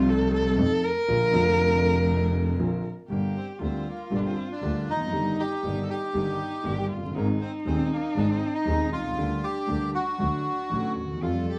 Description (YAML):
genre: tango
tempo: 118 BPM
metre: 4/4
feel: rubato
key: Bb major, G minor from 3.1 s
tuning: A4 = 440 Hz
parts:
  - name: dark cello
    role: second line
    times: 0.0-11.6 s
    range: D4 to Bb4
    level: -31 LUFS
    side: equal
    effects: none
  - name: warm concert grand piano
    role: accompaniment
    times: 0.0-11.4 s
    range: Eb1 to Ab4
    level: -30 LUFS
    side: equal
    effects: none
  - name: warm double bass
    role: bass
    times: 0.0-11.4 s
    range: F1 to F2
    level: -31 LUFS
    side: equal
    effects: none
  - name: bandoneon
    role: melody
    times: 3.1-11.6 s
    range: Bb3 to A4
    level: -33 LUFS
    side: equal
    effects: plate reverb
room: moderate studio reverb, RT60 0.7 s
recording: vinyl crackle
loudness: -26 LUFS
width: mono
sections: 0.0-3.1 A section; 3.1-11.6 B section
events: cello solo 0.0-3.1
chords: 0.0 F7; 1.1 Bb; 3.1 Gm; 5.1 Eb/G; 7.2 Ab; 9.2 Gm/D; 10.2 D